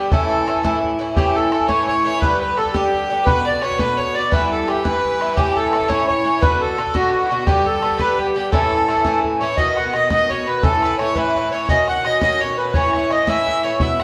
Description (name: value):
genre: celtic folk, Celtic jig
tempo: 114 BPM (dotted quarters)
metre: 6/8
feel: straight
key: A mixolydian, B mixolydian from 9.6 s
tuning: A4 = 440 Hz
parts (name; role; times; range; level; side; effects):
- accordion; melody; 0.0-14.0 s; F#4 to F#5; -21 LUFS; equal; light tremolo tuning
- bright fiddle; second line; 0.0-14.0 s; E4 to F#5; -29 LUFS; equal; none
- Irish bouzouki; accompaniment; 0.0-14.0 s; G2 to G4; -24 LUFS; equal; none
- bodhran; percussion; 0.1-14.0 s; none; -25 LUFS; equal; none
room: wet stone room reverb, RT60 1.2 s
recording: band playing live in one room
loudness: -18 LUFS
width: mono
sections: 0.0-1.2 A section; 1.2-9.6 A section; 9.6-14.0 B section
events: none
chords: 0.1 A; 2.2 G; 3.3 Bm; 4.3 Em; 5.4 A; 6.4 Bm; 7.5 G; 8.5 A; 9.6 B; 10.6 A; 11.7 Badd9; 12.7 A